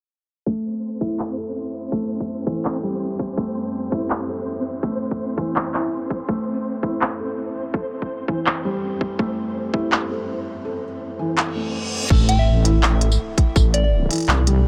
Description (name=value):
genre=half-time drum and bass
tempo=165 BPM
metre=4/4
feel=swing 55% on 16ths, half-time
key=A minor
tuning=A4 = 440 Hz
part: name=felt-muted upright piano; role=arpeggios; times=0.5-14.7 s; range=E3 to A4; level=-28 LUFS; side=equal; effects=low-pass filter, delay
part: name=electronic kick drum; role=drums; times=0.5-9.8, 12.1-13.6 s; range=none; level=-22 LUFS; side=equal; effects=overdrive, high-pass filter on kick
part: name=flickering grainy texture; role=texture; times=0.7-12.1 s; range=C4 to C5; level=-33 LUFS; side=equal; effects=built-in reverb
part: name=organic electronic drum kit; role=drums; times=1.2-14.5 s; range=crash cymbal, handclaps, hi-hat, tambourine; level=-25 LUFS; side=equal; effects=none
part: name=reverse cymbal and impact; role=sound effects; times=11.5-13.6 s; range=none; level=-32 LUFS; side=equal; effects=none
part: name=deep soft wobble bass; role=bass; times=12.1-14.7 s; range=A1 to C2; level=-19 LUFS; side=equal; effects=chorus, tube saturation
part: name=soft synth bell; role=melody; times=12.3-13.9 s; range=D5 to G5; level=-29 LUFS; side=equal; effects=chorus, delay
room=light reverb, digital ambience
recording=low-pass filter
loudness=-22 LUFS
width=mono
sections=0.5-12.1 A section; 12.1-14.7 B section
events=filter sweep on felt piano 0.5-12.1; filter sweep 0.5-12.1; kick drops out 10.6-12.1; reverse cymbal 11.5-12.1; drop 12.1-14.7; impact 12.1-13.6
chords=0.5 Am7/E; 12.1 Am